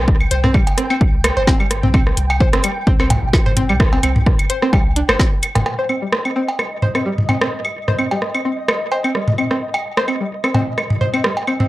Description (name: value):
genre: minimal techno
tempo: 129 BPM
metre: 4/4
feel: swing 55% on 16ths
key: C minor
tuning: A4 = 440 Hz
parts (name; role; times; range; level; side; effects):
- punchy sub bass; bass; 0.0-11.7 s; G1 to C2; -22 LUFS; equal; sidechain pumping, high-pass filter
- flickering grainy texture; texture; 0.0-11.7 s; Eb5 to G5; -29 LUFS; left 1 dB; built-in reverb, sidechain pumping
- electronic kick drum; drums; 0.1-5.3 s; none; -15 LUFS; equal; none
- organic electronic drum kit; percussion; 0.2-11.7 s; claves, cowbell, rim click, toms; -19 LUFS; equal; tape echo
- string-like resonator pluck; riff; 0.3-11.7 s; G3 to C5; -21 LUFS; equal; chorus, cassette tape, sidechain pumping, analog delay
- garage drum kit; drums; 0.3-5.6 s; hi-hat, snare drum; -20 LUFS; left 1 dB; low-pass filter on hats, low-pass filter on snare
room: moderate small room reverb, RT60 0.5 s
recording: dry, gritty hardware recording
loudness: -14 LUFS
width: side -17 dB against mid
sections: 0.0-5.7 A section; 5.7-11.7 B section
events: none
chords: 0.0 C5; 5.7 Cm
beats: | 0.08 0.54 1.01 1.47 | 1.94 2.40 2.87 3.33 | 3.80 4.26 4.73 5.20 | 5.66 6.12 6.59 7.06 | 7.52 7.99 8.45 8.92 | 9.38 9.85 10.31 10.78 | 11.24